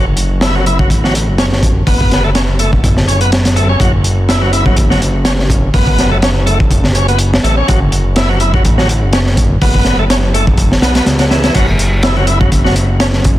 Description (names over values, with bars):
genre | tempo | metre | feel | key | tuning
breakbeat, breaks | 124 BPM | 4/4 | swing 55% on 16ths | F# minor pentatonic | A4 = 439 Hz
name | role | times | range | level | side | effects
bright tonewheel organ | riff | 0.0-13.1 s | E3 to E4 | -17 LUFS | equal | overdrive, fast rotary speaker, low-pass filter, tape echo
fat analog bass | bass | 0.0-13.4 s | F#1 to C#2 | -14 LUFS | equal | none
crunchy breakbeat drum kit | drums | 0.2-13.4 s | crash cymbal, hi-hat, kick drum, snare drum | -12 LUFS | equal | none
room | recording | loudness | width
little or no reverb | dense, heavily limited modern master, vinyl crackle | -9 LUFS | side -14 dB against mid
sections
0.0-11.5 A section; 11.5-13.4 A section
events
none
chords
0.0 F#m7; 11.5 F#7(no3)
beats
0.42 0.90 1.39 | 1.87 2.35 2.84 3.32 | 3.81 4.29 4.77 5.26 | 5.74 6.22 6.71 7.19 | 7.68 8.16 8.64 9.13 | 9.61 10.10 10.58 11.06 | 11.55 12.03 12.52 13.00